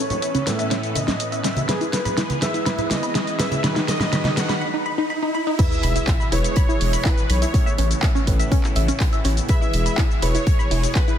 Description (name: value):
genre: progressive house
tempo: 123 BPM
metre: 4/4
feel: straight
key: E major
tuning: A4 = 439 Hz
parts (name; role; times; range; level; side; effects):
- soft supersaw; melody; 0.0-11.2 s; G#4 to F#5; -28 LUFS; left 1 dB; sidechain pumping, low-pass filter, digital delay
- filtered supersaw swell; sustained chords; 0.0-11.2 s; B2 to B4; -31 LUFS; equal; phaser, sidechain pumping
- riser and sub drop; sound effects; 1.4-7.5 s; none; -32 LUFS; right 1 dB; none
- pop drum kit; drums; 0.1-11.2 s; cabasa, crash cymbal, handclaps, hi-hat, snare drum; -26 LUFS; equal; sidechain pumping on hats, soft clipping on snare, sidechain pumping on perc, sidechain pumping on cymbals
- congas and bongos; percussion; 0.1-4.5 s; none; -28 LUFS; right 1 dB; sidechain pumping on perc
- wide unison pluck; arpeggios; 0.2-11.1 s; C#4 to B5; -27 LUFS; equal; sidechain pumping, digital delay
- felt-muted upright piano; stabs; 0.5-11.2 s; A2 to E5; -29 LUFS; right 2 dB; sidechain pumping, low-pass filter, digital delay
- electronic kick drum; drums; 5.6-11.1 s; none; -19 LUFS; equal; none
- loose indie drum kit; drums; 5.6-11.1 s; hi-hat, snare drum; -37 LUFS; right 4 dB; sidechain pumping on hats, high-pass filter on hats, high-pass filter on snare, high-pass filter on room
- saturated sub bass; bass; 5.8-10.9 s; E1 to B1; -21 LUFS; equal; sidechain pumping
room: light reverb, small room ambience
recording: dense, heavily limited modern master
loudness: -18 LUFS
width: side -10 dB against mid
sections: 0.0-5.6 A section; 5.6-11.2 B section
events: build-up 0.0-5.6; drum fill 0.0-4.6; filter sweep on synth pluck 0.0-5.6; filter sweep on supersaw synth 0.0-5.6; break 4.6-5.6; drop 5.6-11.2; impact 5.6-7.5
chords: 0.0 Aadd9; 1.7 E; 3.6 B; 5.6 E; 7.5 Aadd9; 9.5 E